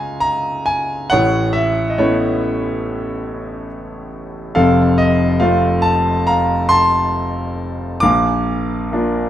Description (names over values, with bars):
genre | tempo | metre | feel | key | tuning
classical, lyrical solo piano | 70 BPM | 4/4 | rubato | unclear | A4 = 442 Hz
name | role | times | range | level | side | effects
bright concert grand piano | solo | 0.0-9.3 s | F1 to D6 | -15 LUFS | equal | none
room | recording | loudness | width
moderate recital hall reverb, RT60 1.5 s | none | -14 LUFS | side -11 dB against mid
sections
0.0-9.3 A section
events
none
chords
0.0 Db; 1.1 Aadd9; 4.6 F; 8.0 Bb